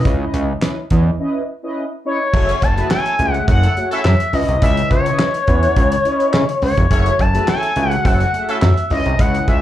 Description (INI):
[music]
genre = early-eighties boogie funk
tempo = 105 BPM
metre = 4/4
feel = straight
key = F# dorian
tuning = A4 = 440 Hz
[part]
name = mellow synth brass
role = accompaniment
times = 0.0-9.5 s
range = A3 to F#5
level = -24 LUFS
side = equal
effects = chorus, slapback echo
[part]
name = fat analog bass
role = bass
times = 0.1-9.6 s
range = E#1 to C#3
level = -16 LUFS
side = equal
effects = none
[part]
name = damped 70s drum kit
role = drums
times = 0.1-9.6 s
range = crash cymbal, handclaps, hi-hat, kick drum, snare drum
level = -19 LUFS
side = equal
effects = none
[part]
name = expressive synth lead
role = melody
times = 2.1-9.6 s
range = C#5 to A5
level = -18 LUFS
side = left 2 dB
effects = chorus, slapback echo, tape echo
[part]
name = warm horn section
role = second line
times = 2.3-8.6 s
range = F#3 to C#5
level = -26 LUFS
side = right 2 dB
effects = slapback echo
[sound]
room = light reverb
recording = live gig heard through the venue's PA, club reverb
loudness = -14 LUFS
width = side -12 dB against mid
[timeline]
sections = 0.0-2.3 A section; 2.3-9.6 B section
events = break 1.2-2.3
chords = 0.0 C#m9; 2.3 F#m9; 4.3 C#m9; 6.9 F#m9; 8.9 C#m9